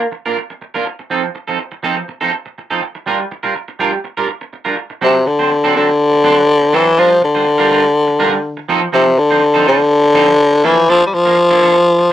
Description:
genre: disco.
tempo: 123 BPM.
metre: 4/4.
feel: straight.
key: G minor.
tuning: A4 = 440 Hz.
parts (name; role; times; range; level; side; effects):
semi-hollow electric guitar; accompaniment; 0.0-12.1 s; F3 to C5; -17 LUFS; right 4 dB; lush chorus.
growling tenor saxophone; melody; 5.0-12.1 s; C3 to G3; -10 LUFS; left 1 dB; none.
room: light reverb.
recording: dry, close 1970s-style studio recording.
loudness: -11 LUFS.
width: side -12 dB against mid.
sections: 0.0-5.0 A section; 5.0-12.1 B section.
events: none.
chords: 0.0 Bb; 0.9 F7; 2.8 Gm7; 5.0 D7; 7.0 Gm7; 8.7 F7; 10.6 Bbmaj7.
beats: 0.12 0.61 | 1.10 1.59 2.08 2.57 | 3.06 3.55 4.04 4.53 | 5.02 5.51 6.00 6.49 | 6.98 7.46 7.95 8.44 | 8.93 9.42 9.91 10.40 | 10.88 11.38 11.86.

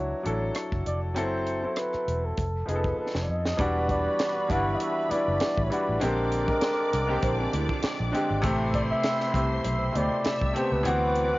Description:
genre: lush 1970s-style soul.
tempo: 99 BPM.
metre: 4/4.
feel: swing 54% on 16ths.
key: E minor.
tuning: A4 = 441 Hz.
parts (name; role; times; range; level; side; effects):
breathy flugelhorn; melody; 0.0-11.4 s; A4 to F#5; -29 LUFS; equal; cassette tape.
bright baby grand piano; accompaniment; 0.0-11.4 s; B2 to C#5; -29 LUFS; left 1 dB; cassette tape.
vintage muted fingered electric bass; bass; 0.0-11.3 s; E1 to F2; -30 LUFS; equal; none.
tight funk drum kit; drums; 0.3-11.3 s; hi-hat, kick drum, rim click, snare drum; -31 LUFS; equal; none.
clear studio string section; second line; 3.6-11.4 s; B4 to E6; -37 LUFS; left 2 dB; cassette tape.
muted trombone section; stabs; 3.6-11.4 s; D3 to F#4; -35 LUFS; right 2 dB; cassette tape.
electric guitar through a small old amp; riff; 7.1-8.4 s; E#3 to B#4; -34 LUFS; right 5 dB; phaser, cassette tape.
room: light reverb, small room ambience.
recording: home recording on cassette, nothing above 7.5 kHz.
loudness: -24 LUFS.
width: side -19 dB against mid.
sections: 0.0-3.6 A section; 3.6-11.4 B section.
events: drum fill 3.0-3.6.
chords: 0.0 Dmaj9; 1.2 F#m7b5; 2.4 F7#11; 3.6 Em9; 6.0 A#13; 8.4 Am9; 10.9 D13.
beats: 0.56 | 1.16 1.77 2.38 2.98 | 3.59 4.20 4.80 5.41 | 6.01 6.62 7.22 7.83 | 8.43 9.04 9.64 10.25 | 10.86.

